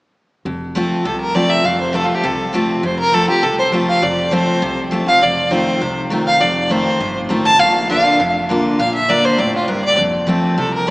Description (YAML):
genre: bluegrass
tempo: 202 BPM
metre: 4/4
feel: straight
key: F major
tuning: A4 = 441 Hz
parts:
  - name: picked steel-string acoustic guitar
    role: accompaniment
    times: 0.5-10.9 s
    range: F2 to F4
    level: -18 LUFS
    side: equal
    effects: none
  - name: upright bass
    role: bass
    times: 0.5-10.9 s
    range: F1 to C2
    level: -28 LUFS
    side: equal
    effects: none
  - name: clear fiddle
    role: melody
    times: 1.0-10.9 s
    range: F4 to A5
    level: -15 LUFS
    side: equal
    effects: none
room: wet cathedral reverb, RT60 4.4 s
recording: recorded in a church or concert hall, small speaker sound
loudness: -13 LUFS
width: side -22 dB against mid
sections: 0.5-10.9 A section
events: none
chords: 0.5 F; 5.2 F7; 7.6 Bb; 10.0 F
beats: | 0.46 0.75 1.05 1.35 | 1.65 1.94 2.24 2.54 | 2.84 3.13 3.43 3.73 | 4.03 4.32 4.62 4.92 | 5.22 5.51 5.81 6.11 | 6.41 6.71 7.00 7.30 | 7.60 7.90 8.20 8.49 | 8.79 9.09 9.39 9.69 | 9.99 10.28 10.58 10.88